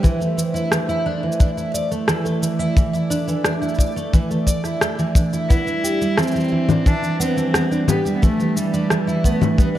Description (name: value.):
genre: folktronica.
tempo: 88 BPM.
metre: 4/4.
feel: straight.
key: unclear.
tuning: A4 = 441 Hz.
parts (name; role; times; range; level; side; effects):
warm analog pad; sustained chords; 0.0-9.8 s; G3 to E5; -29 LUFS; equal; chorus.
fingerpicked twelve-string acoustic guitar; arpeggios; 0.0-9.8 s; E3 to D5; -21 LUFS; right 1 dB; tape echo.
electronic shaker, rim click and congas; drums; 0.0-9.7 s; none; -23 LUFS; left 2 dB; none.
kick drum; drums; 0.0-9.7 s; none; -15 LUFS; equal; none.
warm cello; melody; 5.5-9.8 s; G3 to E4; -22 LUFS; equal; tape echo.
room: light reverb.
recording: dark, warm production.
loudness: -17 LUFS.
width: side -13 dB against mid.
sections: 0.0-9.8 A section.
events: none.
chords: 0.0 Dsus2; 5.5 Em7.